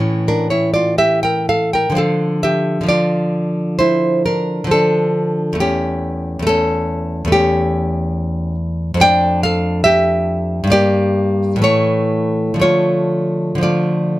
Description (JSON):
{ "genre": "romantic piece for solo classical guitar", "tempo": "58-72 BPM", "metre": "4/4", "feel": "rubato", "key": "D minor", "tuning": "A4 = 442 Hz", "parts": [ { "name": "nylon-string guitar", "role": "solo", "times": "0.0-14.2 s", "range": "E2 to G5", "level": "-14 LUFS", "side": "equal", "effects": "none" } ], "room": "light reverb", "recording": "close, detailed microphones", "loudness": "-14 LUFS", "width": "side -16 dB against mid", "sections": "0.0-14.2 A section", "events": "none", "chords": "0.0 A; 2.0 Dm; 5.6 A7/E; 9.0 Dm/F; 10.7 Gm; 11.6 A; 12.6 Dm", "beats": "0.04 0.98 | 1.97 2.90 3.82 4.72 | 5.61 6.48 7.33 8.17 | 9.02 9.86 10.73 11.65 | 12.63 13.64" }